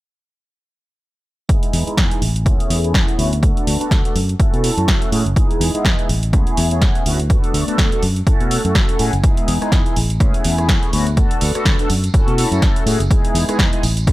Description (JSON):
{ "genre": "filtered disco house", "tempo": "124 BPM", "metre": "4/4", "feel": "swing 56% on 16ths", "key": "E major", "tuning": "A4 = 441 Hz", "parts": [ { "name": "mellow synth brass", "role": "accompaniment", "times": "1.5-14.1 s", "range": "G#3 to A4", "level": "-22 LUFS", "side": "equal", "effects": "chorus, phaser, cassette tape, sidechain pumping, low-pass filter" }, { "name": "electronic kick drum", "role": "drums", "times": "1.5-14.1 s", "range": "none", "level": "-16 LUFS", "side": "equal", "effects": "none" }, { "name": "punchy analog drum machine", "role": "drums", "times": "1.5-14.1 s", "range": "hi-hat, rim click, snare drum", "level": "-22 LUFS", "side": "equal", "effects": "sidechain pumping on hats" }, { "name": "tambourine", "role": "percussion", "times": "1.5-14.1 s", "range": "none", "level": "-38 LUFS", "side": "right 5 dB", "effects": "none" }, { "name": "fingered electric bass", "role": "bass", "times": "1.7-14.1 s", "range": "F#1 to B2", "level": "-19 LUFS", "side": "equal", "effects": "tube saturation, sidechain pumping, low-pass filter" } ], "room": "little or no reverb", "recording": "none", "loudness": "-14 LUFS", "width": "side -17 dB against mid", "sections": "1.5-14.1 A section", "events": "filter sweep 1.5-14.1", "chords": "1.5 Emaj7; 2.2 Amaj9; 3.4 D6; 4.2 F#m7; 5.4 Emaj7; 6.1 Amaj9; 7.3 D6; 8.0 F#m7; 9.2 Emaj7; 10.0 Amaj9; 11.2 D6; 11.9 F#m7; 13.1 Emaj7" }